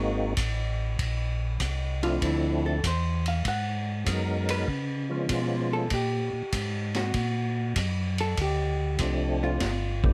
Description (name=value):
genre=soul jazz organ trio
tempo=97 BPM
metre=4/4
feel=swing 69% on 8ths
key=unclear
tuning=A4 = 439 Hz
part: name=percussive tonewheel organ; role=melody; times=0.0-10.1 s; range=F3 to Bb4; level=-32 LUFS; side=equal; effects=slow rotary speaker, chorus vibrato
part: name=mellow tonewheel organ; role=bass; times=0.0-10.1 s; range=G1 to C#3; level=-31 LUFS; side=equal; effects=chorus vibrato, slow rotary speaker
part: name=vintage drum kit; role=drums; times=0.4-10.1 s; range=hi-hat, kick drum, ride cymbal, snare drum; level=-34 LUFS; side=equal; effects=none
part: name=vintage hollow-body jazz guitar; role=accompaniment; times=2.0-10.1 s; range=E4 to F#5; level=-34 LUFS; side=equal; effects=none
room=little or no reverb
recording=close, detailed microphones, faint mains hum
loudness=-28 LUFS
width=mono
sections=0.0-10.1 A section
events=hollow-body jazz guitar solo 0.0-10.1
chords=0.0 G#9; 1.0 Bbmaj9#11; 3.4 G#m7; 4.7 C#7; 5.9 F#; 8.4 Dm7; 9.6 G7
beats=0.37 | 0.98 1.60 2.21 2.83 | 3.45 4.06 4.68 5.30 | 5.91 6.53 7.14 7.76 | 8.38 8.99 9.61